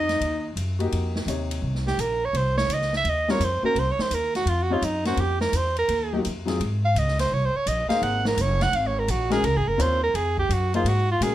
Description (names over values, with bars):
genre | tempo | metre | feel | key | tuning
modal jazz | 169 BPM | 4/4 | swing 65% on 8ths | F phrygian | A4 = 439 Hz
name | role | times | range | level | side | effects
clear soprano saxophone | melody | 0.0-11.3 s | Eb4 to Gb5 | -24 LUFS | right 2 dB | none
warm alto saxophone | second line | 0.0-0.5 s | Eb4 | -28 LUFS | left 2 dB | none
upright bass | bass | 0.0-11.3 s | Gb1 to Bb2 | -26 LUFS | equal | none
swinging big-band drum kit | drums | 0.1-11.3 s | hi-hat, kick drum, ride cymbal, snare drum | -33 LUFS | equal | none
dark grand piano | accompaniment | 0.8-11.3 s | C3 to Db5 | -28 LUFS | left 4 dB | none
room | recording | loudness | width
light reverb | none | -21 LUFS | side -13 dB against mid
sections
0.9-11.3 A section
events
soprano saxophone solo 0.9-11.3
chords
0.0 Ab7sus2 (rootless); 0.9 F9sus4; 6.6 Ab9sus4